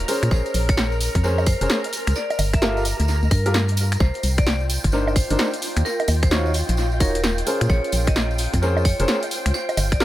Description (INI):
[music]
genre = UK garage, two-step garage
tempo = 130 BPM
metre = 4/4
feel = swing 64% on 16ths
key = unclear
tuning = A4 = 440 Hz
[part]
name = soft string machine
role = sustained chords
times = 0.0-10.0 s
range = F4 to Bb5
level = -31 LUFS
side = equal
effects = phaser, ensemble chorus, sidechain pumping
[part]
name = organ-like FM bass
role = bass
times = 0.0-10.0 s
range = Eb1 to Bb2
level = -21 LUFS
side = equal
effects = none
[part]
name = punchy analog drum machine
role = drums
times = 0.0-10.0 s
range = bongos, finger snaps, hi-hat, snare drum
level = -26 LUFS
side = equal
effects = dub echo
[part]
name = tambourine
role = percussion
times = 0.0-10.0 s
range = none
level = -32 LUFS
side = right 3 dB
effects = dub echo
[part]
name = dark grand piano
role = stabs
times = 0.1-10.0 s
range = Db4 to Db5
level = -26 LUFS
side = equal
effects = tape echo
[part]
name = vibraphone with hard mallets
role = melody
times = 0.3-10.0 s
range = Bb4 to E5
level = -30 LUFS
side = equal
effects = tape echo
[part]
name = electronic kick drum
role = drums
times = 0.3-10.0 s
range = none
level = -20 LUFS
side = equal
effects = none
[sound]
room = light reverb, small room ambience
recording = echo-heavy mix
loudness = -18 LUFS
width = side -14 dB against mid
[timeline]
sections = 0.0-10.0 A section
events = none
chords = 0.1 Bbm9; 2.2 Gm9; 4.0 Cm9; 5.6 Ebm9; 7.5 Bbm9; 9.5 G7(no3)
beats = | 0.31 0.77 1.24 1.70 | 2.16 2.62 3.08 3.54 | 4.00 4.47 4.93 5.39 | 5.85 6.31 6.77 7.24 | 7.70 8.16 8.62 9.08 | 9.54 10.00